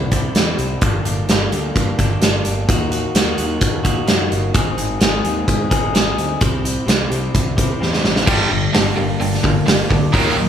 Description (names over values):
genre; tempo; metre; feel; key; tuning
quiet-loud alternative rock; 129 BPM; 4/4; straight; unclear; A4 = 440 Hz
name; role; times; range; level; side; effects
electric guitar through a small old amp; arpeggios; 0.0-10.5 s; G2 to Ab4; -23 LUFS; left 1 dB; none
fuzz picked electric bass; bass; 0.0-10.5 s; G1 to Ab2; -22 LUFS; equal; overdrive
big rock drum kit; drums; 0.1-10.2 s; crash cymbal, hi-hat, kick drum, snare drum; -17 LUFS; equal; none
distorted electric guitar; riff; 8.3-10.5 s; G2 to Bb3; -18 LUFS; equal; overdrive
room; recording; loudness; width
light reverb; band playing live in one room; -15 LUFS; side -9 dB against mid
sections
0.0-8.3 A section; 8.3-10.5 B section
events
drum fill 7.8-8.3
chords
0.0 C; 0.8 Gm; 2.7 Ebm; 4.6 Ab; 6.4 C; 8.3 Gm